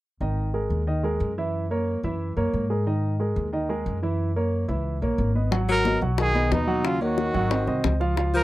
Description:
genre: Afro-Cuban jazz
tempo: 181 BPM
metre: 4/4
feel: straight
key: G# minor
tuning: A4 = 440 Hz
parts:
  - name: warm grand piano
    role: accompaniment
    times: 0.2-8.4 s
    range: D#3 to F#5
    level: -26 LUFS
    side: right 2 dB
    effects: none
  - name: upright bass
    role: bass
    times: 0.2-8.4 s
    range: G#1 to G#2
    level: -26 LUFS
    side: equal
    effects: none
  - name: bongos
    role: percussion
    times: 5.5-8.4 s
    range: none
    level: -30 LUFS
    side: left 7 dB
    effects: none
  - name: breathy trumpet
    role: melody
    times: 5.7-8.4 s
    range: D#4 to A#4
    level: -26 LUFS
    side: right 2 dB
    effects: none
  - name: breathy tenor saxophone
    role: second line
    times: 5.7-8.4 s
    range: B2 to F#3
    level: -28 LUFS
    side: left 4 dB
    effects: none
room: little or no reverb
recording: dry, close 1970s-style studio recording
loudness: -22 LUFS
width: side -16 dB against mid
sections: 0.2-5.5 A section; 5.5-8.4 B section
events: none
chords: 0.2 G#sus2; 1.5 F#7; 2.9 G#sus2; 4.2 F#7; 5.5 G#m9; 6.8 D#m7; 7.5 G#7

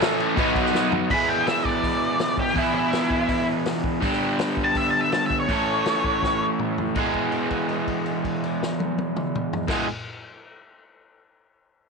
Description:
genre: garage rock duo or trio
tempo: 164 BPM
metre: 4/4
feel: straight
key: E major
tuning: A4 = 442 Hz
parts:
  - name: crunchy overdriven guitar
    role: riff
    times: 0.0-9.9 s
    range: E2 to A4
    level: -23 LUFS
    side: right 1 dB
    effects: none
  - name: vintage drum kit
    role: drums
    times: 0.0-9.8 s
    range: crash cymbal, hi-hat, kick drum, snare drum, toms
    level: -29 LUFS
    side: left 2 dB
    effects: none
  - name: octave-fuzz lead guitar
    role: melody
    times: 1.1-6.4 s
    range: E4 to B5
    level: -24 LUFS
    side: left 1 dB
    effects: distortion, tape echo
room: light reverb, small room ambience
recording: 1960s-style stereo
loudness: -21 LUFS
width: side -4 dB against mid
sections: 0.0-1.1 A section; 1.1-7.0 B section; 7.0-9.9 C section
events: drum fill 0.7-1.1, 6.2-7.0; lead electric guitar solo 1.1-7.0; held note 7.0-9.7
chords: 0.4 B; 1.1 E; 4.0 G; 5.5 A; 7.0 E

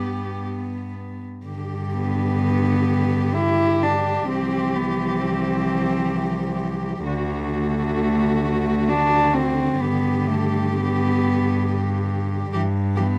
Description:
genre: classical, lyrical piece for cello ensemble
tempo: 65 BPM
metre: 3/4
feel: rubato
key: G major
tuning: A4 = 441 Hz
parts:
  - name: dark cello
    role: melody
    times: 0.0-13.0 s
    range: F#4 to G4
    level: -32 LUFS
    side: equal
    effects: none
  - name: dark cello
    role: second line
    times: 0.0-13.2 s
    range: A3 to E4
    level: -25 LUFS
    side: equal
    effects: none
  - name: warm cello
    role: accompaniment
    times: 0.0-13.1 s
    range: D3 to B3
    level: -30 LUFS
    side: equal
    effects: none
  - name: rich cello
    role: bass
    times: 0.0-13.2 s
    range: C2 to G2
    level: -27 LUFS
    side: equal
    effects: none
room: light reverb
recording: none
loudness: -22 LUFS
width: mono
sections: 0.0-1.5 A section; 1.5-13.2 B section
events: none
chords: 0.0 G; 4.3 C; 7.1 D; 9.8 G; 12.5 Em/G

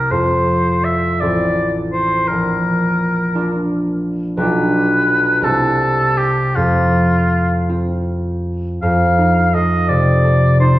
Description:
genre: classical, romantic duo for oboe and harp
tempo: 52-58 BPM (dotted quarters)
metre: 6/8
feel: rubato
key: F major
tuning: A4 = 440 Hz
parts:
  - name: warm oboe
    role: melody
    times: 0.0-10.8 s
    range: F4 to F5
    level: -17 LUFS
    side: equal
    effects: none
  - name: concert harp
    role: accompaniment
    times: 0.0-10.8 s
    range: A1 to G4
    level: -16 LUFS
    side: equal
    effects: none
room: wet recital hall reverb, RT60 1.4 s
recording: heard from further back in the room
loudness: -14 LUFS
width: side -15 dB against mid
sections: 0.0-8.8 A section; 8.8-10.8 B section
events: none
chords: 0.1 F5; 1.2 F/A; 2.3 Bb; 4.4 Bdim; 5.4 C; 6.6 F5; 8.8 F7

